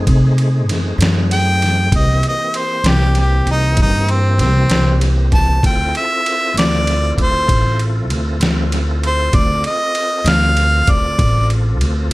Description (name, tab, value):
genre	slow blues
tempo	65 BPM (dotted quarters)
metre	12/8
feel	straight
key	unclear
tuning	A4 = 440 Hz
part	tonewheel organ	sustained chords	0.0-12.1 s	E3 to A4	-25 LUFS	equal	chorus vibrato, fast rotary speaker
part	upright bass	bass	0.0-12.1 s	A1 to C3	-15 LUFS	equal	none
part	trip hop sampler-style drum kit	drums	0.1-12.0 s	kick drum, ride cymbal, snare drum	-19 LUFS	equal	tape echo
part	warm harmonica	melody	1.3-11.5 s	C4 to A5	-17 LUFS	equal	overdrive
room	digital ambience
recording	echo-heavy mix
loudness	-13 LUFS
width	side -20 dB against mid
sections	0.0-12.1 A section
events	harmonica solo 0.0-12.1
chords	0.0 F#dim7; 1.9 C7; 5.6 Dm7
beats	0.06 0.99 | 1.92 2.85 3.77 4.70 | 5.63 6.56 7.49 8.41 | 9.34 10.26 11.19 12.11